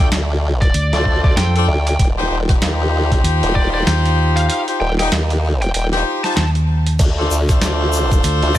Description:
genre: glitch hop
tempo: 96 BPM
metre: 4/4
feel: swing 59% on 16ths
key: unclear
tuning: A4 = 440 Hz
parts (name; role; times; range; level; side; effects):
- biting lead guitar; melody; 0.0-8.6 s; D5 to A5; -24 LUFS; equal; overdrive, vintage 12-bit sampler grit, digital delay
- warm horn section; stabs; 0.0-8.6 s; D4 to Eb5; -21 LUFS; left 2 dB; sidechain pumping, digital delay
- formant-sweep wobble bass; bass; 0.0-8.6 s; Eb1 to Eb2; -18 LUFS; equal; chorus, tube saturation
- boom bap sampler-style drum kit; drums; 0.1-8.5 s; crash cymbal, hi-hat, snare drum; -24 LUFS; right 1 dB; studio reverb
- electronic kick drum; drums; 0.6-8.6 s; none; -16 LUFS; equal; studio reverb
- hollow-body short-scale fingered electric bass; bass; 0.7-8.4 s; D2 to F2; -16 LUFS; equal; none
- tube shaker; percussion; 7.0-8.6 s; none; -28 LUFS; left 5 dB; none
room: little or no reverb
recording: none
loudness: -14 LUFS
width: side -13 dB against mid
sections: 0.0-8.6 A section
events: kick drops out 4.5-7.0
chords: 0.0 Dm7; 2.0 Eb69; 7.0 Dm7

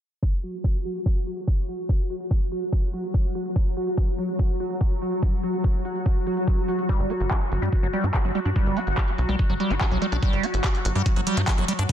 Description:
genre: psychedelic trance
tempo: 144 BPM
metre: 4/4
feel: straight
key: unclear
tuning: A4 = 437 Hz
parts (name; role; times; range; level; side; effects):
- pulsing gated texture; sustained chords; 0.4-11.9 s; F#3 to F#4; -28 LUFS; equal; chorus, built-in reverb, sidechain pumping
- electronic kick drum; drums; 0.2-11.9 s; none; -22 LUFS; equal; overdrive
- techno drum kit; drums; 0.2-11.9 s; handclaps, hi-hat; -31 LUFS; equal; overdrive, low-pass filter on hats, low-pass filter on snare
- liquid acid bass; riff; 6.9-11.9 s; F#3 to G4; -28 LUFS; moving between left 4 dB and right 5 dB; phaser, auto-pan, sidechain pumping, dub echo
- tight sequencer bass; bass; 7.0-11.9 s; G1 to G2; -24 LUFS; equal; none
room: digital ambience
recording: dense, heavily limited modern master, low-pass filter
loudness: -22 LUFS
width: side -10 dB against mid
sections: 0.2-11.9 A section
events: filter sweep on drum 0.2-11.9; filter sweep on synth texture 0.2-11.9; filter sweep 0.2-11.9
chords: 0.2 N.C.; 6.9 G5

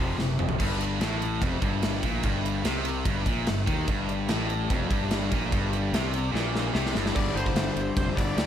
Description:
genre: hard rock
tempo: 147 BPM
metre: 4/4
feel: straight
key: G minor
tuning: A4 = 439 Hz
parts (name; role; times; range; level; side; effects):
- tonewheel organ; sustained chords; 0.0-0.6, 3.9-8.5 s; F3 to G4; -41 LUFS; right 3 dB; overdrive, fast rotary speaker
- crunchy overdriven guitar; riff; 0.0-8.5 s; F2 to G3; -30 LUFS; left 6 dB; none
- heavy high-gain guitar; riff; 0.0-7.1 s; F2 to F3; -33 LUFS; right 15 dB; distortion
- fuzz fingered electric bass; bass; 0.0-8.5 s; F1 to Eb2; -31 LUFS; right 1 dB; overdrive
- gated 80s drum kit; drums; 0.2-8.5 s; crash cymbal, kick drum, ride cymbal, snare drum, toms; -28 LUFS; equal; none
- smooth overdriven lead guitar; melody; 7.2-8.5 s; C5 to D5; -35 LUFS; right 3 dB; analog delay
room: studio reverb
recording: none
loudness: -24 LUFS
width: side -10 dB against mid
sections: 0.6-7.2 A section; 7.2-8.5 B section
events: drum fill 0.2-0.6, 6.3-7.2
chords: 0.0 F5; 0.6 Gm; 7.2 G5

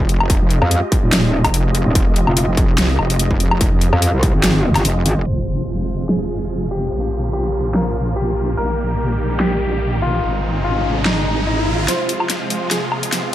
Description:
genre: heavy wobble dubstep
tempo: 145 BPM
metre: 4/4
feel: swing 54% on 16ths, half-time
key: F minor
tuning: A4 = 441 Hz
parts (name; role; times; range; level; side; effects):
- supersaw chords; sustained chords; 0.0-13.3 s; C3 to Eb5; -24 LUFS; right 1 dB; phaser, sidechain pumping, low-pass filter
- wobble bass; bass; 0.0-11.9 s; F1 to C2; -19 LUFS; equal; chorus, overdrive
- electronic kick drum; drums; 0.0-4.3 s; none; -17 LUFS; equal; distortion, studio reverb
- dubstep drum kit; drums; 0.1-13.2 s; hi-hat, snare drum, woodblock; -20 LUFS; left 1 dB; high-pass filter on hats, low-pass filter on hats, studio reverb, high-pass filter on snare, low-pass filter on snare, high-pass filter on perc, low-pass filter on perc
- metallic wobble bass; bass; 0.6-5.2 s; Eb1 to F2; -15 LUFS; equal; chorus, overdrive
- warm baby grand piano; melody; 5.3-13.3 s; Eb4 to C5; -24 LUFS; left 2 dB; low-pass filter, tape echo
- impact and riser; sound effects; 5.3-13.3 s; none; -26 LUFS; equal; none
room: light reverb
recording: low-pass filter, faint mains hum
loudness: -15 LUFS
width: side -13 dB against mid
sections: 0.0-5.3 A section; 5.3-11.9 B section; 11.9-13.3 C section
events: drop 0.0-5.3; kick drops out 4.4-5.3; impact 5.3-6.9; filter sweep on drum 5.3-11.9; filter sweep 5.3-11.9; riser 9.5-11.9, 11.9-13.3; build-up 11.9-13.3; drum fill 11.9-13.3; filter sweep on grand piano 11.9-13.3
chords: 0.0 Fmadd9; 5.3 Fm; 6.9 Bbm; 8.6 Eb/Bb; 10.2 Ab; 11.9 Fm

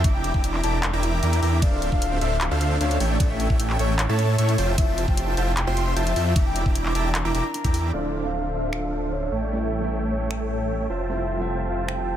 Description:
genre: future bass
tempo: 152 BPM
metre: 4/4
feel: half-time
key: D minor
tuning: A4 = 440 Hz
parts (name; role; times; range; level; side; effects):
- soft octave-layered synth lead; melody; 0.0-12.2 s; C#5 to Bb5; -30 LUFS; left 1 dB; chorus, phaser, sidechain pumping, dub echo
- airy dreamy lead; arpeggios; 0.0-7.9 s; F5 to D6; -35 LUFS; equal; chorus, sidechain pumping, ping-pong delay
- concert harp; arpeggios; 0.0-10.6 s; C4 to D5; -36 LUFS; right 2 dB; sidechain pumping, ping-pong delay
- dense compressed supersaw; riff; 0.0-12.2 s; A3 to D6; -28 LUFS; right 1 dB; sidechain pumping, low-pass filter
- wide detuned saw bass; bass; 0.0-12.2 s; D1 to A2; -25 LUFS; equal; chorus, sidechain pumping
- dubstep drum kit; drums; 0.0-12.0 s; finger snaps, handclaps, hi-hat, ride cymbal; -31 LUFS; equal; none
- electronic kick drum; drums; 0.0-7.7 s; none; -22 LUFS; equal; none
- dark concert grand piano; accompaniment; 7.9-12.2 s; E3 to E5; -34 LUFS; right 3 dB; sidechain pumping, ping-pong delay
room: little or no reverb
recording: none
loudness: -21 LUFS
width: side -10 dB against mid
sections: 0.0-7.9 A section; 7.9-12.2 B section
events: drop 0.0-7.9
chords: 0.0 Em7b5; 1.6 Dm7; 3.0 A7; 4.6 Fmaj7; 6.4 Em7b5; 7.9 Dm7; 9.3 A7; 10.9 Fmaj7

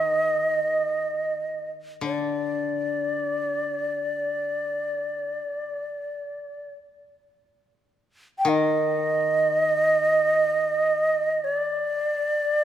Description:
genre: japanese traditional, Japanese chamber music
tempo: free time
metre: none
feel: none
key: unclear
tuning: A4 = 439 Hz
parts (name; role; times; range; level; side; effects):
- shakuhachi; melody; 0.0-12.6 s; D5 to G5; -23 LUFS; right 1 dB; none
- koto; accompaniment; 0.0-11.8 s; D3 to Eb3; -30 LUFS; left 7 dB; none
room: moderate concert hall reverb, RT60 2.2 s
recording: none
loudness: -22 LUFS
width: side -10 dB against mid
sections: 0.0-12.6 A section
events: none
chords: none

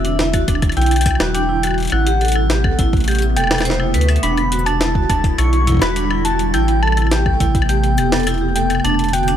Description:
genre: IDM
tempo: 104 BPM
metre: 4/4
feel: straight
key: E minor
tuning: A4 = 440 Hz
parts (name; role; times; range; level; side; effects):
- soft struck synth lead; melody; 0.0-9.4 s; E5 to C#6; -22 LUFS; left 1 dB; chorus, digital delay
- glassy FM pad; sustained chords; 0.0-9.4 s; C3 to F#4; -23 LUFS; left 1 dB; ensemble chorus, built-in reverb
- vibraphone with medium hard mallets; arpeggios; 0.0-9.4 s; D4 to E5; -22 LUFS; right 5 dB; digital delay
- rubbery square bass; bass; 0.0-9.4 s; E1 to D2; -18 LUFS; equal; none
- jungle sampler-style drum kit; drums; 0.0-9.4 s; hi-hat, shaker, snare drum, woodblock; -22 LUFS; left 2 dB; small room ambience
- electronic kick drum; drums; 0.3-7.7 s; none; -18 LUFS; equal; small room ambience
room: little or no reverb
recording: none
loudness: -14 LUFS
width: side -10 dB against mid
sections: 0.0-9.4 A section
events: none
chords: 0.0 Em9; 1.9 Am9; 4.2 Em9; 6.5 Am9; 8.8 Em9

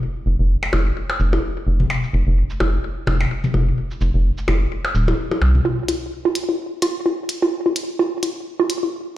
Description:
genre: minimal techno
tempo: 128 BPM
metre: 4/4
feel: swing 57% on 16ths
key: unclear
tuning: A4 = 440 Hz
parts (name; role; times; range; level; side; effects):
- round analog bass; bass; 0.3-5.6 s; Eb1 to C2; -17 LUFS; equal; none
- electronic percussion blips and toms; percussion; 0.6-5.6 s; none; -22 LUFS; left 2 dB; small room ambience, ping-pong delay
- electronic shaker and hi-hat; drums; 0.7-8.8 s; none; -29 LUFS; left 1 dB; low-pass filter on perc, small room ambience, low-pass filter on hats
- hollow square pluck; riff; 5.7-8.8 s; F4; -20 LUFS; right 1 dB; chorus, digital delay
room: moderate studio reverb, RT60 0.6 s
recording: played on a big sound system in a bare room, stone room reverb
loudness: -18 LUFS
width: side -14 dB against mid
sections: 0.0-5.7 A section; 5.7-9.2 B section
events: build-up 5.7-9.2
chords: 0.0 F5; 5.7 N.C.

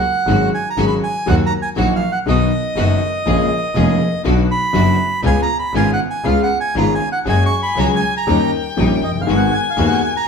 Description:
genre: tango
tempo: 120 BPM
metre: 4/4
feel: rubato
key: unclear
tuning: A4 = 441 Hz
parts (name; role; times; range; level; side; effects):
- bandoneon; melody; 0.0-10.3 s; D#5 to C#6; -20 LUFS; right 3 dB; none
- warm concert grand piano; accompaniment; 0.3-10.0 s; D#1 to G#4; -18 LUFS; left 2 dB; none
- clear studio string section; stabs; 0.3-10.0 s; G3 to G#4; -26 LUFS; left 1 dB; none
- clear double bass; bass; 0.3-10.0 s; E#1 to D#2; -19 LUFS; equal; none
- warm violin; second line; 7.3-10.3 s; G5 to G#5; -23 LUFS; left 7 dB; none
room: wet stone room reverb, RT60 1.0 s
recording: band playing live in one room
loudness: -14 LUFS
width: side -6 dB against mid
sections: 0.0-10.3 A section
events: none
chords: 0.3 C#sus4/G#; 1.3 D#m; 2.3 B; 3.3 A#m7; 4.2 Bm; 5.2 C#7; 7.3 F#sus2; 8.3 D#7; 9.3 G#m7

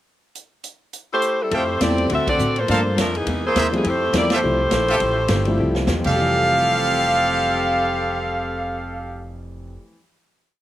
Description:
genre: jazz, big band swing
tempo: 207 BPM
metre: 4/4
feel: swing 59% on 8ths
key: F major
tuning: A4 = 440 Hz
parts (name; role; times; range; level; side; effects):
- swinging big-band drum kit; drums; 0.4-6.1 s; crash cymbal, hi-hat, kick drum, ride cymbal, snare drum; -27 LUFS; right 1 dB; none
- clear saxophone section; melody; 1.1-9.3 s; E3 to F5; -21 LUFS; equal; none
- hollow-body jazz guitar; accompaniment; 1.5-9.9 s; G2 to G4; -30 LUFS; left 4 dB; slapback echo
- brilliant trumpet section; stabs; 1.5-9.3 s; F4 to G5; -21 LUFS; right 2 dB; slapback echo
- upright bass; bass; 1.5-9.8 s; F1 to A2; -26 LUFS; equal; none
- warm concert grand piano; accompaniment; 1.8-9.9 s; F2 to E4; -26 LUFS; left 1 dB; none
room: little or no reverb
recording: none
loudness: -17 LUFS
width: side -13 dB against mid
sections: 0.4-1.5 pickup bar; 1.5-6.2 A section; 6.2-8.5 final hit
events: band accent 2.3, 4.3; drum fill 5.6-6.2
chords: 0.4 Am7/G; 1.5 Fmaj9; 2.1 D7; 2.7 Gm11; 3.3 C7alt; 3.9 Fmaj9

